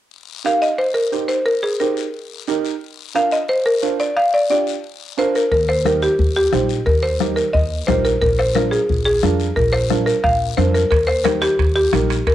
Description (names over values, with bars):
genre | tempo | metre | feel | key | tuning
latin, cumbia | 178 BPM | 4/4 | straight | Eb major | A4 = 438 Hz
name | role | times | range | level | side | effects
guiro | percussion | 0.1-12.3 s | none | -33 LUFS | left 12 dB | none
dark upright piano | accompaniment | 0.4-12.2 s | D4 to C5 | -23 LUFS | right 9 dB | cassette tape
buzzing marimba with hard mallets | melody | 0.5-12.3 s | G4 to F5 | -17 LUFS | equal | cassette tape
upright bass | bass | 5.5-12.3 s | Bb1 to F2 | -21 LUFS | equal | none
bombo | percussion | 5.5-12.3 s | none | -23 LUFS | left 2 dB | none
congas | percussion | 5.9-12.1 s | none | -25 LUFS | left 11 dB | none
timbales | percussion | 10.9-12.3 s | none | -29 LUFS | right 11 dB | none
room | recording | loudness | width
moderate spring reverb, RT60 1.0 s | home recording on cassette | -15 LUFS | side -13 dB against mid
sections
0.1-5.5 A section; 5.5-12.3 B section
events
none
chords
0.1 Eb; 2.8 Bb; 5.5 Eb; 8.2 Bb7; 10.9 Eb